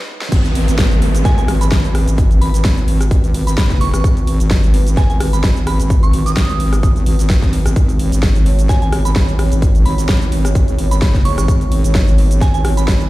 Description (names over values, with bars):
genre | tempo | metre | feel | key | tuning
bass house | 129 BPM | 4/4 | swing 55% on 16ths | G# minor | A4 = 441 Hz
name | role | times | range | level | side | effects
dark analog pad | sustained chords | 0.0-13.1 s | G#3 to C#5 | -26 LUFS | equal | chorus, sidechain pumping
big-room dance drum kit | drums | 0.2-13.1 s | crash cymbal, hi-hat, rim click, shaker, snare drum | -23 LUFS | equal | none
wobble bass | bass | 0.3-13.1 s | F#1 to G#1 | -16 LUFS | equal | chorus, overdrive, sidechain pumping, high-pass filter
electronic kick drum | drums | 0.3-13.0 s | none | -14 LUFS | equal | none
downlifter | sound effects | 0.3-4.0 s | none | -24 LUFS | right 1 dB | none
soft synth bell | melody | 1.2-12.9 s | G#5 to D#6 | -26 LUFS | right 3 dB | chorus, tape echo
room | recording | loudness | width
little or no reverb | played on a big sound system in a bare room, large studio reverb, high-pass filter | -12 LUFS | side -18 dB against mid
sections
0.3-13.1 A section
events
break 0.0-0.3; drum fill 0.0-0.3; drop 0.3-13.1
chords
0.3 G#m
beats
| 0.32 0.79 1.25 1.72 | 2.18 2.65 3.11 3.58 | 4.04 4.51 4.97 5.44 | 5.90 6.37 6.83 7.30 | 7.76 8.23 8.69 9.16 | 9.62 10.09 10.55 11.02 | 11.48 11.95 12.41 12.88